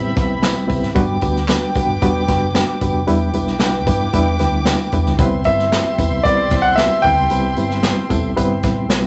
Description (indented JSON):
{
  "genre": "uptempo 1960s-style soul",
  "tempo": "113 BPM",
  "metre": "4/4",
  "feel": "straight",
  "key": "unclear",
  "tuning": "A4 = 442 Hz",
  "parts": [
    { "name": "clear concert grand piano", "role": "melody", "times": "0.0-0.6, 5.5-9.1 s", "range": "D5 to B5", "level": "-20 LUFS", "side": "equal", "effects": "none" },
    { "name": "warm chamber string section", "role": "second line", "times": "0.0-9.1 s", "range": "G4 to D6", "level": "-27 LUFS", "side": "equal", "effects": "none" },
    { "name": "reed electric piano", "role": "accompaniment", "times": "0.0-9.1 s", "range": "G3 to C5", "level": "-22 LUFS", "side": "equal", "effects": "fast tremolo" },
    { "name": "vintage muted fingered electric bass", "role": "bass", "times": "0.0-9.1 s", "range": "E1 to G2", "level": "-25 LUFS", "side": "equal", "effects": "none" },
    { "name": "swinging big-band drum kit", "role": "drums", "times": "0.2-9.0 s", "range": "hi-hat, kick drum, snare drum", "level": "-23 LUFS", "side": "equal", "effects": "none" },
    { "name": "handclaps and tambourine", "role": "percussion", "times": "0.4-9.0 s", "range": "none", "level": "-34 LUFS", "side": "equal", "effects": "none" }
  ],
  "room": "wet club reverb, RT60 0.6 s",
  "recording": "nothing above 8.0 kHz",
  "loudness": "-17 LUFS",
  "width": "mono",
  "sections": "0.0-9.1 A section",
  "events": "none",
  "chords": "0.0 Cmaj7; 1.0 Gmaj7; 3.1 Em7; 5.2 Cmaj7",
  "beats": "0.42 | 0.95 1.48 2.01 2.54 | 3.07 3.60 4.13 4.66 | 5.19 5.72 6.25 6.78 | 7.31 7.84 8.37 8.90"
}